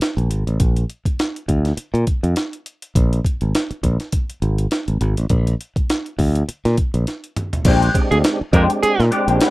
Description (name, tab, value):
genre	funk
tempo	102 BPM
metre	4/4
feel	swing 56% on 16ths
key	Bb mixolydian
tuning	A4 = 440 Hz
part	breakbeat sampler-style drum kit	drums	0.0-9.5 s	crash cymbal, hi-hat, kick drum, snare drum, toms	-20 LUFS	equal	none
part	modern bright fingered electric bass	bass	0.2-9.4 s	Ab1 to Bb2	-17 LUFS	equal	none
part	semi-hollow electric guitar	accompaniment	7.7-9.5 s	Ab3 to D5	-20 LUFS	left 3 dB	wah
part	percussive tonewheel organ	stabs	7.9-9.5 s	Ab3 to G4	-22 LUFS	right 2 dB	overdrive, chorus vibrato, fast rotary speaker
part	breathy tenor saxophone	second line	8.1-9.1 s	Ab4 to Bb4	-17 LUFS	right 3 dB	none
room	little or no reverb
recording	rough home demo mix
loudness	-16 LUFS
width	side -19 dB against mid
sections	0.0-7.7 A section; 7.7-9.5 B section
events	drum fill 7.1-7.7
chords	0.0 Bb7; 7.7 Bb13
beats	0.01 | 0.60 1.19 1.77 2.36 | 2.95 3.54 4.13 4.72 | 5.31 5.89 6.48 7.07 | 7.66 8.24 8.82 9.41